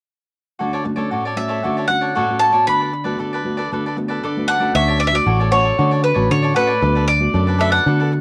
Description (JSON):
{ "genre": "samba", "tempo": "116 BPM", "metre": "4/4", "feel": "straight", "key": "D major", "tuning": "A4 = 439 Hz", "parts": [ { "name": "cavaquinho", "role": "accompaniment", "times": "0.6-8.2 s", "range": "D4 to D5", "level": "-26 LUFS", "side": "equal", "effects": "none" }, { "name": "nylon-string guitar", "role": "accompaniment", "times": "0.6-8.2 s", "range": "A2 to F#4", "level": "-26 LUFS", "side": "equal", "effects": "none" }, { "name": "bowl-back mandolin", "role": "melody", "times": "1.4-8.2 s", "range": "B4 to B5", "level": "-20 LUFS", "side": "equal", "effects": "cassette tape" }, { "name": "fingered electric bass", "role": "bass", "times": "4.7-8.2 s", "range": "A1 to D3", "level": "-20 LUFS", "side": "equal", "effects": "none" } ], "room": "moderate small room ambience, RT60 0.5 s", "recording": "home recording on cassette", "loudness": "-18 LUFS", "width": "mono", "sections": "0.6-4.8 A section; 4.8-8.2 B section", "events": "none", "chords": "0.6 Dmaj7; 2.7 Bm7/D; 4.8 Dmaj7; 6.8 Bm7/D", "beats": "| 0.60 1.12 1.64 2.16 | 2.68 3.19 3.71 4.23 | 4.75 5.27 5.79 6.31 | 6.83 7.34 7.86" }